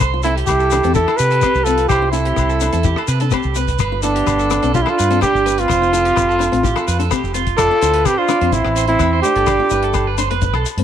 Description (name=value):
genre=highlife guitar band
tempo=127 BPM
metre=4/4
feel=straight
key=C major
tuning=A4 = 439 Hz
part: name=electric guitar at the edge of break-up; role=arpeggios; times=0.0-10.7 s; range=F4 to E5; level=-24 LUFS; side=right 12 dB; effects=spring reverb, slapback echo
part: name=deep dub fingered electric bass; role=bass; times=0.0-10.8 s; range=F1 to C3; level=-20 LUFS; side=equal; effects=none
part: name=cloth-damped thuddy drum kit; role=drums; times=0.0-10.8 s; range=crash cymbal, hi-hat, kick drum, rim click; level=-25 LUFS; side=left 3 dB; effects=none
part: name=agogo bells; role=percussion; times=0.0-10.7 s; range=none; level=-28 LUFS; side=left 12 dB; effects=none
part: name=shekere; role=percussion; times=0.0-10.8 s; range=none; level=-26 LUFS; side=left 7 dB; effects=none
part: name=fingerpicked steel-string acoustic guitar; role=accompaniment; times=0.1-10.8 s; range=A3 to F4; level=-25 LUFS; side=left 11 dB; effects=none
part: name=breathy trumpet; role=melody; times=0.2-10.1 s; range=D4 to B4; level=-16 LUFS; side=equal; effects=none
part: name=clear alto saxophone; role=second line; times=0.3-10.2 s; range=B3 to G4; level=-25 LUFS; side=right 14 dB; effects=none
room=light reverb, small room ambience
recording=1960s-style stereo with parts hard left and right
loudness=-14 LUFS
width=side -9 dB against mid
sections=0.0-7.6 A section; 7.6-10.8 B section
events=none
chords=0.0 C; 3.8 G; 5.7 F; 8.5 Am7; 9.5 G7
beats=| 0.01 0.48 0.95 1.43 | 1.90 2.38 2.85 3.33 | 3.80 4.27 4.75 5.22 | 5.69 6.17 6.64 7.11 | 7.59 8.06 8.53 9.00 | 9.48 9.95 10.42